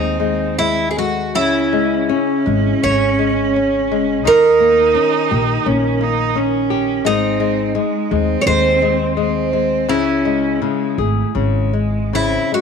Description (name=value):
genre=fado-style ballad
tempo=84 BPM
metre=4/4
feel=uneven beats, rubato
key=C# harmonic minor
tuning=A4 = 440 Hz
part: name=picked twelve-string acoustic guitar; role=melody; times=0.0-12.6 s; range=D#4 to C#5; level=-18 LUFS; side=right 2 dB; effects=none
part: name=clear cello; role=second line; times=0.0-12.6 s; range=G#3 to D#4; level=-21 LUFS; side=right 10 dB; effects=none
part: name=flamenco guitar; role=accompaniment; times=0.0-12.6 s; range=C#3 to G#4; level=-19 LUFS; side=left 13 dB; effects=none
part: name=upright bass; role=bass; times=0.0-12.4 s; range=G#1 to D#2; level=-22 LUFS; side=equal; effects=none
room=moderate echo chamber reverb, RT60 2.0 s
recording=1960s-style stereo with parts hard left and right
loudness=-14 LUFS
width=side -6 dB against mid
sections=0.0-12.6 A section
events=none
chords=0.0 G#; 1.4 C#m; 4.3 D#7; 7.1 G#; 9.9 C#m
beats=0.59 | 1.36 2.10 2.83 3.56 | 4.26 4.96 5.67 6.36 | 7.05 7.76 8.47 9.17 | 9.89 10.61 11.35 12.12